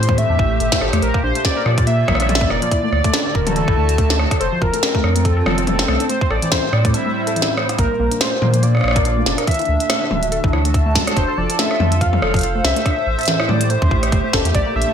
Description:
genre	IDM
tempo	142 BPM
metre	4/4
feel	swing 56% on 16ths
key	Bb lydian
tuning	A4 = 440 Hz
part	warm velvety synth lead	melody	0.0-14.9 s	A4 to F5	-22 LUFS	equal	chorus, cassette tape, ping-pong delay
part	hollow soft pad	sustained chords	0.0-14.9 s	A2 to A5	-24 LUFS	equal	chorus
part	warbly dusty pluck	arpeggios	0.0-14.9 s	E3 to Bb4	-25 LUFS	left 1 dB	chorus, ping-pong delay
part	warm sub bass	bass	0.0-14.8 s	D1 to Bb2	-19 LUFS	equal	none
part	glitchy drum kit	drums	0.0-14.9 s	hi-hat, rim click, snare drum, toms	-20 LUFS	equal	gated reverb
part	electronic kick drum	drums	0.1-14.6 s	none	-21 LUFS	equal	none
part	bubbling stepped-filter texture	texture	14.6-14.9 s	A3 to A4	-30 LUFS	right 2 dB	chorus, built-in reverb
room	light reverb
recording	bright 1980s-style digital production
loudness	-15 LUFS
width	side -8 dB against mid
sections	0.0-7.8 A section; 7.8-14.9 A section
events	none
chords	0.0 Am7; 1.0 Bb; 2.7 D; 4.4 F; 6.1 Am7; 7.8 Bb; 9.5 D; 11.2 F; 12.9 Am7

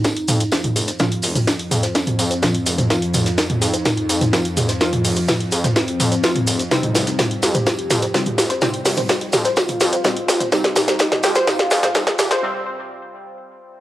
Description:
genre	melodic techno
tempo	126 BPM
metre	4/4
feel	straight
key	unclear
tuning	A4 = 441 Hz
part	expressive synth lead	melody	0.0-12.4 s	C4 to G4	-27 LUFS	equal	lush chorus, sidechain pumping, tape echo
part	tight sequenced synth	arpeggios	0.0-12.4 s	Eb4 to C5	-26 LUFS	equal	chorus, sidechain pumping, tape echo
part	synth brass stab	stabs	0.0-13.8 s	C3 to F4	-28 LUFS	equal	chorus, sidechain pumping, tape echo
part	bowed-like drone	drone	0.2-12.4 s	F2	-30 LUFS	right 1 dB	built-in reverb, sidechain pumping
part	electronic kick drum	drums	0.0-12.0 s	none	-26 LUFS	equal	high-pass filter on kick, high-pass filter on room
part	soft brush drum kit	drums	0.0-12.3 s	hi-hat, snare drum, tambourine	-30 LUFS	right 1 dB	none
part	techno drum kit	drums	0.0-12.4 s	hi-hat, snare drum, toms	-18 LUFS	equal	sidechain pumping on hats, sidechain pumping on toms
part	maracas	percussion	0.0-12.4 s	none	-28 LUFS	right 1 dB	none
part	gritty driven synth bass	bass	0.3-12.3 s	F1 to F2	-25 LUFS	equal	sidechain pumping, high-pass filter
room	moderate recital hall reverb, RT60 1.5 s, small room ambience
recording	dry, gritty hardware recording, high-pass filter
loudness	-16 LUFS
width	side -14 dB against mid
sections	0.0-13.8 A section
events	build-up 0.0-13.8; drum fill 0.0-12.4; filter sweep on synth arpeggio sound 0.0-13.8; filter sweep on analog synth lead 0.0-13.8; filter sweep on synth stab 0.0-13.8; break 12.4-13.8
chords	0.0 F5; 6.7 Cm/F

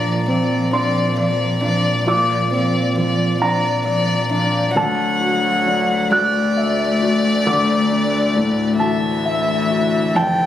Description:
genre	neoclassical piano and strings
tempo	45 BPM (dotted quarters)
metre	6/8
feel	rubato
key	unclear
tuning	A4 = 436 Hz
part	rich violin	melody	0.0-10.5 s	D5 to G5	-21 LUFS	left 2 dB	none
part	warm cello	second line	0.0-10.5 s	E3 to A3	-24 LUFS	right 1 dB	none
part	warm concert grand piano	accompaniment	0.0-10.5 s	D2 to F#6	-20 LUFS	left 1 dB	none
part	dark double bass	bass	0.0-10.5 s	F1 to D2	-22 LUFS	left 1 dB	none
room	light reverb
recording	recorded on a phone in the room, club reverb, compression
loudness	-15 LUFS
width	side -11 dB against mid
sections	0.0-10.5 A section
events	none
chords	0.0 Bbadd9; 4.8 Dadd9

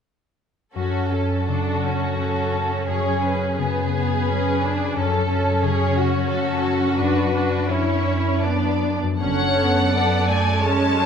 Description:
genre	classical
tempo	72-90 BPM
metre	3/4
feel	rubato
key	F# minor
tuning	A4 = 440 Hz
part	rich symphonic violin section	melody	0.8-11.1 s	F#4 to A5	-27 LUFS	left 3 dB	none
part	warm symphonic violin section	second line	0.8-11.1 s	D4 to D5	-25 LUFS	left 1 dB	none
part	rich symphonic viola section	accompaniment	0.8-11.1 s	F#3 to D4	-26 LUFS	right 3 dB	none
part	concert harp	arpeggios	0.8-11.1 s	F#2 to A4	-26 LUFS	left 7 dB	none
part	rich symphonic cello section	bass	0.8-11.1 s	F#2	-25 LUFS	right 4 dB	none
part	rich symphonic double bass section	bass	9.2-9.9 s	F#1	-30 LUFS	right 4 dB	none
room	wet recital hall reverb, RT60 1.7 s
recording	minimal, uncompressed stereo recording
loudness	-19 LUFS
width	side -7 dB against mid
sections	0.8-9.2 A section; 9.2-11.1 B section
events	none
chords	0.8 F#m; 2.9 C#5/F#; 5.0 F#m; 7.0 Bm/F#; 9.2 F#m

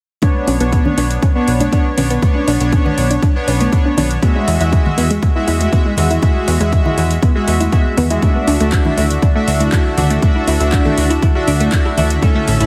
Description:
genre	progressive house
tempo	120 BPM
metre	4/4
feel	straight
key	B dorian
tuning	A4 = 437 Hz
part	glassy wavetable pluck	arpeggios	0.2-12.7 s	G#3 to E4	-22 LUFS	equal	chorus, sidechain pumping, delay
part	soft supersaw	stabs	0.2-12.7 s	G#3 to E5	-21 LUFS	equal	sidechain pumping, delay
part	deep house drum kit	drums	0.2-12.7 s	handclaps, hi-hat, rim click	-28 LUFS	equal	overdrive, sidechain pumping on hats, studio reverb
part	electronic kick drum	drums	0.2-12.3 s	none	-16 LUFS	equal	overdrive, studio reverb
part	congas	percussion	0.2-12.3 s	none	-26 LUFS	equal	sidechain pumping on perc
part	plucky analog bass	bass	0.5-12.7 s	A1 to E2	-19 LUFS	equal	sidechain pumping
part	evolving wavetable pad	sustained chords	9.1-12.7 s	D3 to A4	-28 LUFS	equal	none
room	light reverb, digital ambience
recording	heavily compressed radio sound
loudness	-14 LUFS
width	mono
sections	0.2-12.7 A section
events	filter sweep on synth arpeggio sound 0.2-12.7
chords	0.2 Bmadd9; 4.2 Eadd9; 8.2 Dadd9

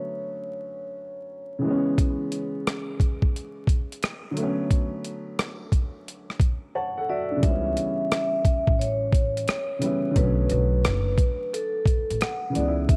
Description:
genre	lo-fi hip hop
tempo	88 BPM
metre	4/4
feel	swing 66% on 16ths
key	B minor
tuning	A4 = 440 Hz
part	vibraphone with soft mallets	melody	0.0-1.6, 6.8-13.0 s	A4 to F#5	-31 LUFS	equal	low-pass filter
part	dark upright piano	accompaniment	0.0-13.0 s	C#3 to A5	-31 LUFS	equal	cassette tape, low-pass filter
part	boom bap sampler-style drum kit	drums	2.0-13.0 s	hi-hat, kick drum, rim click	-25 LUFS	equal	none
part	upright bass	bass	7.4-13.0 s	F#1 to C#2	-28 LUFS	equal	none
room	light reverb, studio reverb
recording	vinyl crackle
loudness	-25 LUFS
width	mono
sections	0.0-7.4 A section; 7.4-13.0 B section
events	upright piano fill 6.4-7.4; silent gap 6.8-7.4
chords	0.0 Bm9; 1.6 C#m7; 4.4 Bm9; 7.4 C#m7b5; 10.2 Bm9

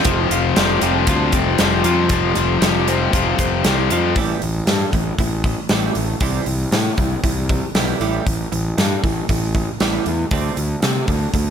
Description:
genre	quiet-loud alternative rock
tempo	117 BPM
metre	4/4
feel	straight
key	unclear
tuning	A4 = 440 Hz
part	tight distorted guitar	riff	0.0-4.2 s	F2 to F3	-19 LUFS	left 16 dB	distortion
part	big rock drum kit	drums	0.0-11.5 s	hi-hat, kick drum, snare drum	-20 LUFS	equal	none
part	twelve-string electric guitar	arpeggios	0.1-11.5 s	A2 to F4	-24 LUFS	right 7 dB	wide subtle chorus
part	fuzz fingered electric bass	bass	0.1-11.5 s	F1 to C3	-21 LUFS	equal	overdrive
room	light reverb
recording	none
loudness	-16 LUFS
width	side -8 dB against mid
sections	0.1-4.2 A section; 4.2-11.5 B section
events	none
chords	0.1 Fsus2; 4.2 A5; 6.2 C; 8.0 A5; 10.3 D5

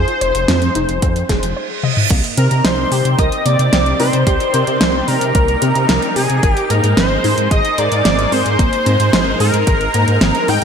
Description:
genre	synthwave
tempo	111 BPM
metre	4/4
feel	straight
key	C minor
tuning	A4 = 440 Hz
part	wide unison lead	melody	0.0-10.6 s	Ab4 to G5	-19 LUFS	equal	analog chorus, cassette tape, ping-pong delay
part	lush unison pad	sustained chords	0.0-10.6 s	Ab3 to D5	-23 LUFS	equal	chorus, phaser, sidechain pumping
part	warbly dusty pluck	arpeggios	0.0-10.6 s	Bb3 to Eb5	-23 LUFS	left 2 dB	chorus, ping-pong delay
part	wide detuned saw bass	bass	0.0-10.6 s	F1 to C3	-17 LUFS	equal	chorus
part	pop drum kit	drums	0.1-10.6 s	crash cymbal, hi-hat, snare drum, toms	-19 LUFS	equal	overdrive, gated reverb
part	electronic kick drum	drums	1.0-9.8 s	none	-16 LUFS	equal	overdrive
part	reverse cymbal	sound effects	1.5-2.1 s	none	-23 LUFS	right 6 dB	none
part	airy dreamy lead	second line	2.4-10.6 s	Ab5 to G6	-23 LUFS	equal	chorus
room	moderate lush hall reverb, RT60 1.9 s, digital ambience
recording	bright 1980s-style digital production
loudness	-12 LUFS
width	side -7 dB against mid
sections	0.0-2.1 A section; 2.1-10.6 B section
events	reverse cymbal 1.5-2.1; drum fill 1.8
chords	0.0 Fm7; 2.1 Cm7; 6.4 Abadd9

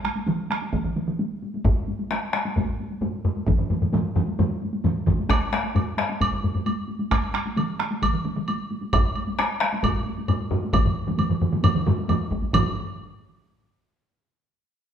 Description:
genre	japanese traditional, taiko drum ensemble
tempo	132 BPM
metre	4/4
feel	straight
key	none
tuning	none
part	taiko ensemble	percussion	0.0-12.7 s	none	-29 LUFS	left 1 dB	none
part	taiko ensemble	percussion	0.0-13.0 s	none	-27 LUFS	right 3 dB	none
part	taiko ensemble	percussion	0.7-12.7 s	none	-26 LUFS	equal	none
part	taiko ensemble	percussion	1.6-13.0 s	none	-25 LUFS	left 1 dB	none
part	woodblock	percussion	5.3-12.8 s	none	-29 LUFS	right 2 dB	none
room	wet large studio reverb, RT60 1.2 s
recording	band playing live in one room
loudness	-22 LUFS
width	side -8 dB against mid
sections	0.0-12.5 A section; 12.5-14.9 B section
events	none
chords	none

